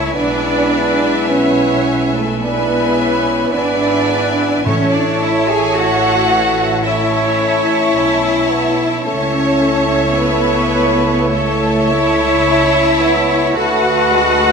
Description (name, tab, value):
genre	classical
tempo	54 BPM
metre	4/4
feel	rubato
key	A major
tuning	A4 = 440 Hz
part	rich studio violin section	melody	0.0-14.5 s	G#5 to A5	-25 LUFS	left 3 dB	none
part	rich chamber violin section	second line	0.0-14.5 s	A4 to G#5	-23 LUFS	right 1 dB	none
part	warm clarinet	second line	0.0-14.5 s	A4 to E5	-26 LUFS	right 1 dB	none
part	rich studio viola section	accompaniment	0.0-14.5 s	B4 to F#5	-22 LUFS	equal	none
part	mellow French horn section	sustained chords	0.0-14.5 s	G#3 to F#4	-21 LUFS	left 4 dB	none
part	warm trumpet	stabs	0.0-14.5 s	B4 to C#5	-23 LUFS	equal	none
part	rich studio cello section	bass	0.0-14.5 s	A3 to G#4	-18 LUFS	right 1 dB	none
part	warm studio double bass section	bass	0.0-14.5 s	G#1 to D2	-24 LUFS	right 4 dB	none
part	mellow flute section	second line	0.1-14.5 s	A4 to G#5	-22 LUFS	left 1 dB	none
part	mellow bassoon	accompaniment	0.1-14.5 s	G#3 to D4	-23 LUFS	right 4 dB	none
part	timpani	percussion	4.7-6.3 s	A2	-22 LUFS	left 2 dB	none
room	wet recital hall reverb, RT60 1.4 s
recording	none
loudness	-12 LUFS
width	side -5 dB against mid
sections	0.0-14.5 A section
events	none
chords	0.2 E7/B; 4.7 A; 9.1 A/C#; 13.6 Bm7/D